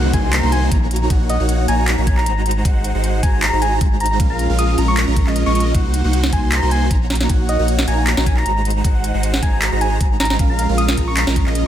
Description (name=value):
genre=future bass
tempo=155 BPM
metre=4/4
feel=swing 54% on 16ths, half-time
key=unclear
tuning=A4 = 438 Hz
part: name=airy dreamy lead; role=arpeggios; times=0.0-11.6 s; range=Eb5 to C6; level=-29 LUFS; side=equal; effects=chorus, sidechain pumping
part: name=supersaw chords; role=riff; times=0.0-11.6 s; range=Ab3 to C6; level=-22 LUFS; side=right 1 dB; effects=phaser, cassette tape, sidechain pumping
part: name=saturated sub bass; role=bass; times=0.0-11.6 s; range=Ab1 to C2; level=-19 LUFS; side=equal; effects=sidechain pumping
part: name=downlifter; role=sound effects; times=0.0-2.7 s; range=none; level=-29 LUFS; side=left 2 dB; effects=none
part: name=soft struck synth lead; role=melody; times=0.1-11.2 s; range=Eb5 to Eb6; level=-24 LUFS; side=left 1 dB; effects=chorus, sidechain pumping, ping-pong delay
part: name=electronic kick drum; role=drums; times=0.1-11.4 s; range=none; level=-17 LUFS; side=equal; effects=small room ambience
part: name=trap drum kit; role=drums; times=0.1-11.6 s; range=handclaps, hi-hat, snare drum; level=-22 LUFS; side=equal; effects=small room ambience
room=little or no reverb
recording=none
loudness=-14 LUFS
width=side -11 dB against mid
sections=0.0-11.7 A section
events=none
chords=0.0 Cm7b5; 0.9 Ebm7/Bb; 2.5 Ab7; 4.2 Bbm7; 5.7 Cm7b5; 7.1 Ebm7/Bb; 8.7 Ab7; 10.4 Bbm7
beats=0.33 0.71 | 1.10 1.49 1.88 2.26 | 2.65 3.04 3.42 3.81 | 4.20 4.59 4.97 5.36 | 5.75 6.13 6.52 6.91 | 7.30 7.68 8.07 8.46 | 8.84 9.23 9.62 10.01 | 10.39 10.78 11.17 11.55